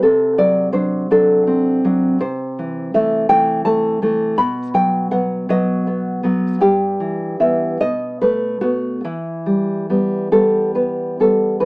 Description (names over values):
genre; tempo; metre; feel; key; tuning
romantic piece for solo classical guitar; 46-57 BPM (dotted quarters); 6/8; rubato; E minor; A4 = 442 Hz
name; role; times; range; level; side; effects
nylon-string guitar; solo; 0.0-11.7 s; G2 to B5; -15 LUFS; equal; none
room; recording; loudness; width
light reverb; small speaker sound; -15 LUFS; side -27 dB against mid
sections
0.0-11.6 A section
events
none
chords
0.1 D7/C; 2.2 Am/C; 4.4 B; 6.6 Em/G; 7.8 B7; 9.0 Em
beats
| 0.06 1.13 | 2.22 3.31 | 4.39 5.50 | 6.62 7.81 | 9.05 10.33 | 11.62